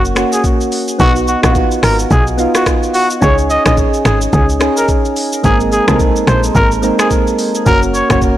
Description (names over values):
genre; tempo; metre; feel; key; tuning
afrobeats; 108 BPM; 4/4; swing 58% on 16ths; Db major; A4 = 440 Hz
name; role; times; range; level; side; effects
warm trumpet; melody; 0.0-8.2 s; Gb4 to Eb5; -16 LUFS; equal; tape echo
soft electric-piano-like synth keys; accompaniment; 0.0-8.4 s; Ab3 to Bb4; -15 LUFS; right 1 dB; chorus
woody log drum bass; bass; 0.0-8.3 s; Gb1 to Db2; -15 LUFS; equal; none
afro-pop drum kit; drums; 0.1-8.4 s; finger snaps, hi-hat, kick drum, rim click, shaker; -16 LUFS; equal; soft clipping on snare
room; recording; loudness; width
light reverb; blown-out, overdriven recording, overdrive; -10 LUFS; side -13 dB against mid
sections
0.0-8.4 A section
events
none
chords
0.0 Gb; 1.0 Cb; 3.2 Dbsus2; 5.4 Abadd9; 7.7 Gb